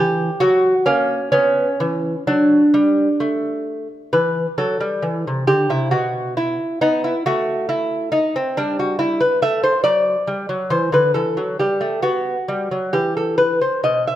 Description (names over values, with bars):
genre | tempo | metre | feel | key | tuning
classical, baroque-style dance for lute | 63-70 BPM | 3/4 | rubato | B minor, E minor from 4.1 s | A4 = 441 Hz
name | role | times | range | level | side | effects
lute | solo | 0.0-14.2 s | B2 to E5 | -16 LUFS | equal | none
room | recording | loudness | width
moderate recital hall reverb, RT60 1.7 s | none | -16 LUFS | side -12 dB against mid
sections
0.0-4.1 A section; 4.1-14.2 A section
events
none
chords
0.4 F#; 1.3 Bm; 4.1 Em; 6.8 Asus2; 8.6 N.C.; 9.4 A5; 12.0 Bsus4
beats
0.41 | 1.33 2.27 3.21 | 4.13 5.03 5.93 | 6.82 7.69 8.55 | 9.42 10.28 11.15 | 12.03 12.93 13.84